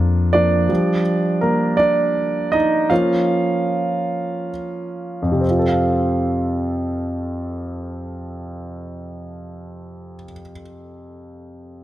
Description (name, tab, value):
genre	pop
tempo	43-57 BPM (dotted quarters)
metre	6/8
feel	straight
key	F major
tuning	A4 = 440 Hz
part	clear concert grand piano	accompaniment	0.0-11.8 s	F2 to F5	-19 LUFS	right 1 dB	none
part	upright bass	bass	0.0-0.7 s	F2	-17 LUFS	left 2 dB	none
room	light reverb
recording	none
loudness	-17 LUFS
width	side -14 dB against mid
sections	0.0-5.4 A section; 5.4-11.0 B section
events	grand piano solo 0.0-5.4; slowing down 0.7-5.4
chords	0.0 Bb; 0.7 Ebmaj7; 2.9 Bbm; 5.4 F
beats	| 0.70 1.78 | 2.91 4.11 | 5.44 6.84 | 8.24 9.63